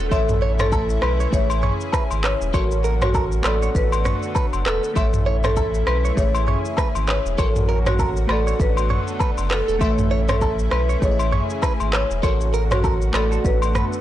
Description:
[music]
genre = afrobeats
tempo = 99 BPM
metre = 4/4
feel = swing 58% on 16ths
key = A major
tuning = A4 = 440 Hz
[part]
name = glassy digital keys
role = accompaniment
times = 0.0-14.0 s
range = A3 to E5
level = -28 LUFS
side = left 1 dB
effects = chorus
[part]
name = lush unison pad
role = sustained chords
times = 0.0-14.0 s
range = C#3 to G#4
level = -31 LUFS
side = left 1 dB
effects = chorus
[part]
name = direct-recorded clean electric guitar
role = riff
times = 0.0-13.8 s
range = A4 to E5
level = -28 LUFS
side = right 7 dB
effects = phaser
[part]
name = warm sub bass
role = bass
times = 0.0-13.8 s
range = E1 to B1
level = -22 LUFS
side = equal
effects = none
[part]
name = afro-pop drum kit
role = drums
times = 0.1-14.0 s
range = handclaps, kick drum, rim click, shaker, toms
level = -23 LUFS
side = equal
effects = soft clipping on snare
[part]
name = agogo bells and woodblock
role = percussion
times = 0.1-13.7 s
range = none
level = -30 LUFS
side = left 6 dB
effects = none
[part]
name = marimba with medium mallets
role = melody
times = 0.6-13.9 s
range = F#4 to C#5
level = -27 LUFS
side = left 1 dB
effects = digital delay
[sound]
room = light reverb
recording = blown-out, overdriven recording, overdrive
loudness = -18 LUFS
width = side -13 dB against mid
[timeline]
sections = 0.0-14.0 A section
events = none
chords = 0.1 A; 1.3 C#m/A; 2.5 F#/A; 3.4 Bm7/A; 5.0 A; 6.2 C#m/A; 7.4 F#/A; 8.3 Bm7/A; 9.8 A; 11.0 C#m/A; 12.2 F#/A; 13.1 Bm7/A

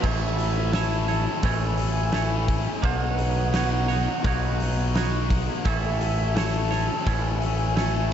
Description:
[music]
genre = rock, shoegaze and dream pop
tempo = 85 BPM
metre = 4/4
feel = straight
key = A lydian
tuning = A4 = 439 Hz
[part]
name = biting overdriven guitar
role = riff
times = 0.0-8.1 s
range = A2 to A4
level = -30 LUFS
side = left 13 dB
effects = wide subtle chorus
[part]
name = twangy electric guitar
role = riff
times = 0.0-8.1 s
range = A3 to C#5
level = -30 LUFS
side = right 15 dB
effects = reverse reverb
[part]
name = growling picked electric bass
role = bass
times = 0.0-8.1 s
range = A1 to B1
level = -25 LUFS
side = equal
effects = overdrive
[part]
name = huge arena drum kit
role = drums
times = 0.0-7.9 s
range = crash cymbal, hi-hat, kick drum, snare drum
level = -28 LUFS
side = equal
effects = none
[part]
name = mellow hollow concert flute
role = melody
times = 0.1-8.1 s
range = E5 to A5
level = -32 LUFS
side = right 1 dB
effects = slapback echo
[sound]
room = small room reverb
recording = dark, warm production, nothing above 7.8 kHz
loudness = -22 LUFS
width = side -9 dB against mid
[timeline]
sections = 0.0-8.1 A section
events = none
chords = 0.0 A; 2.8 Badd9; 5.7 A

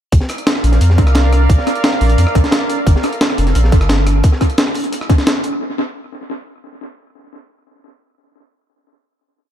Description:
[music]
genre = liquid drum and bass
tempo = 175 BPM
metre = 4/4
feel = straight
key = G minor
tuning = A4 = 437 Hz
[part]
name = lush unison pad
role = sustained chords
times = 0.4-4.2 s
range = A4 to F5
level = -23 LUFS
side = right 2 dB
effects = chorus, sidechain pumping
[part]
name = warm sub bass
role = bass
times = 0.1-4.2 s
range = F1 to F2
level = -12 LUFS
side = equal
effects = none
[part]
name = breakbeat sampler-style drum kit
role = drums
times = 0.1-5.5 s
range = hi-hat, rim click, snare drum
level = -18 LUFS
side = equal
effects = analog delay
[part]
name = crunchy breakbeat drum kit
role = drums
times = 0.1-5.5 s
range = hi-hat, snare drum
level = -26 LUFS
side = equal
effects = high-pass filter on hats, high-pass filter on snare, high-pass filter on room, analog delay
[part]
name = electronic kick drum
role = drums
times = 0.1-5.2 s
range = none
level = -12 LUFS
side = equal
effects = none
[sound]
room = digital ambience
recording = echo-heavy mix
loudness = -12 LUFS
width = side -10 dB against mid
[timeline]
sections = 0.1-5.6 drop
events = drop 0.1-5.6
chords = 0.1 C7sus4; 2.9 Gm7

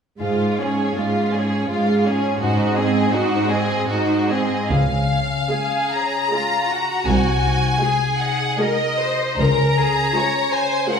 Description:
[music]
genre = classical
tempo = 70-86 BPM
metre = 3/4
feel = rubato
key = Db major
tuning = A4 = 440 Hz
[part]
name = clear studio violin section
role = melody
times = 0.2-11.0 s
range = C5 to Bb5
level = -23 LUFS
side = left 1 dB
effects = none
[part]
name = rich studio violin section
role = second line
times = 0.2-11.0 s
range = F4 to Db5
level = -23 LUFS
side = left 2 dB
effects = none
[part]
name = warm symphonic viola section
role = accompaniment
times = 0.2-11.0 s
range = Ab3 to Ab4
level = -23 LUFS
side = right 3 dB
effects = none
[part]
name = concert harp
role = arpeggios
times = 0.2-11.0 s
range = Ab2 to Eb5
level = -25 LUFS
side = left 3 dB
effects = none
[part]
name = rich symphonic cello section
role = bass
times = 0.2-10.0 s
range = C2 to Ab2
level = -24 LUFS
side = right 2 dB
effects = none
[part]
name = rich studio double bass section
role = bass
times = 4.7-10.0 s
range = C2 to Db2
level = -25 LUFS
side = right 3 dB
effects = none
[sound]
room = wet recital hall reverb, RT60 1.3 s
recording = recorded in a church or concert hall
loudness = -17 LUFS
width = side -6 dB against mid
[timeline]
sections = 0.2-4.7 A section; 4.7-11.0 B section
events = none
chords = 0.2 Db/Ab; 2.4 Ab7; 4.7 Db; 7.1 Ab7/C; 9.4 Db

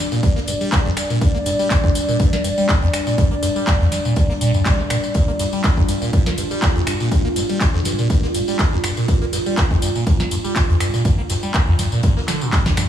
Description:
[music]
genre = acid house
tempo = 122 BPM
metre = 4/4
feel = swing 54% on 16ths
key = G minor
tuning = A4 = 440 Hz
[part]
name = warbly tape-like pad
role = sustained chords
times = 0.0-12.9 s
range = G3 to D5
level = -24 LUFS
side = equal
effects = chorus, built-in reverb, sidechain pumping
[part]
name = liquid acid bass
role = riff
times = 0.1-12.8 s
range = F2 to Bb3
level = -21 LUFS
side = equal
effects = phaser, tube saturation, vintage 12-bit sampler grit, tape echo
[part]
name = booming analog drum machine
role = drums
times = 0.1-12.9 s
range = finger snaps, handclaps, hi-hat, ride cymbal, snare drum, tambourine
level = -24 LUFS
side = equal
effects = none
[part]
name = electronic kick drum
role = drums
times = 0.2-12.7 s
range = none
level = -18 LUFS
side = equal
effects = none
[part]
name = loose indie drum kit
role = drums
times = 0.2-12.9 s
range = hi-hat, snare drum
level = -34 LUFS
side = left 2 dB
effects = sidechain pumping on hats, high-pass filter on hats, high-pass filter on snare, high-pass filter on room
[sound]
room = light reverb, digital ambience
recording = small room ambience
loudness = -16 LUFS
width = side -10 dB against mid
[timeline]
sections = 0.0-12.9 A section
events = none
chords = 0.0 G5

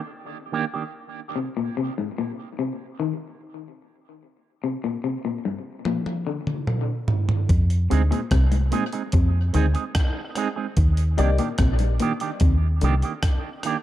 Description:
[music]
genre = dub reggae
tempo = 73 BPM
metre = 4/4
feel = straight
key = unclear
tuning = A4 = 441 Hz
[part]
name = electric guitar with an envelope filter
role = accompaniment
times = 0.5-0.8, 7.9-13.8 s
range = Eb3 to Ab4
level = -28 LUFS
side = right 7 dB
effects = tremolo, tape echo
[part]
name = electric guitar through a small old amp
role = arpeggios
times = 1.4-12.9 s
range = G2 to Eb3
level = -28 LUFS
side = left 6 dB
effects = tape echo
[part]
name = breakbeat sampler-style drum kit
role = drums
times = 5.9-13.8 s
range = hi-hat, kick drum, rim click, toms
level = -23 LUFS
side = equal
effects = none
[part]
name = deep dub fingered electric bass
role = bass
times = 7.5-13.0 s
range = Bb1 to F2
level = -19 LUFS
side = equal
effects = none
[part]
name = dark upright piano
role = stabs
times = 11.2-11.4 s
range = Eb4 to D5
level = -31 LUFS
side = left 6 dB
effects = tape echo
[sound]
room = light reverb, digital ambience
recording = dark, warm production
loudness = -21 LUFS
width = side -13 dB against mid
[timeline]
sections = 0.0-13.8 A section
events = break 0.0-10.8; drum fill 5.9-7.5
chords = 0.0 Ebmaj7; 0.9 Abadd9; 4.2 Gmadd11; 7.5 Fm7; 10.8 Ebmaj7

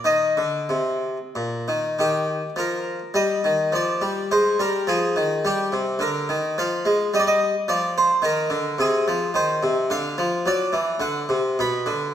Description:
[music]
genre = classical, baroque-style suite movement for harpsichord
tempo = 106 BPM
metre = 3/4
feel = rubato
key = Eb major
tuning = A4 = 439 Hz
[part]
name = harpsichord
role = solo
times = 0.0-12.1 s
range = Bb2 to B5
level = -20 LUFS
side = equal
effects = none
[sound]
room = wet recital hall reverb, RT60 1.6 s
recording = none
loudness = -20 LUFS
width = side -10 dB against mid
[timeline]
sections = 0.0-2.0 A section; 2.0-12.1 B section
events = none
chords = 0.1 Eb5; 2.0 Eb; 3.2 Eb/G; 3.7 Ebmaj13; 5.4 Eb; 6.6 Fm; 7.1 Eb; 8.8 Ab/C; 9.9 Dm; 10.5 D7; 11.6 Bm

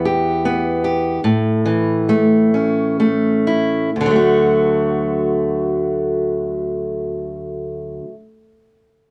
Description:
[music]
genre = folk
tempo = 40-52 BPM (dotted quarters)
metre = 6/8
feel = straight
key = D major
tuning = A4 = 440 Hz
[part]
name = fingerpicked steel-string acoustic guitar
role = solo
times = 0.0-8.2 s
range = D2 to G4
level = -18 LUFS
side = equal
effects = none
[sound]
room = moderate studio reverb, RT60 0.5 s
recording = worn, warbling old tape, cassette tape, warbly pitch drift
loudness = -17 LUFS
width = mono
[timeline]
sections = 0.0-3.9 A section; 3.9-7.0 B section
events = slowing down 0.0-3.9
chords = 0.0 Em; 1.2 A; 3.9 D

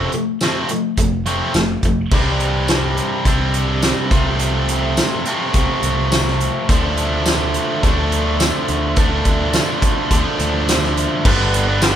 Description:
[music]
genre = indie rock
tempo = 105 BPM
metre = 4/4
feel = straight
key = unclear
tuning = A4 = 443 Hz
[part]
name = biting overdriven guitar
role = riff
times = 0.0-12.0 s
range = G2 to D4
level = -18 LUFS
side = equal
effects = none
[part]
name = picked electric bass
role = bass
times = 0.0-12.0 s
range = F1 to D2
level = -22 LUFS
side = equal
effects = none
[part]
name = loose indie drum kit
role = drums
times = 0.1-12.0 s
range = crash cymbal, hi-hat, kick drum, snare drum, tambourine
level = -18 LUFS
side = equal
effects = none
[sound]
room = light reverb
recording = band playing live in one room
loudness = -15 LUFS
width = side -10 dB against mid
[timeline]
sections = 0.0-2.1 A section; 2.1-11.3 B section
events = none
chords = 0.0 F; 2.1 Csus2; 4.1 F/C; 6.7 Dm; 11.3 G

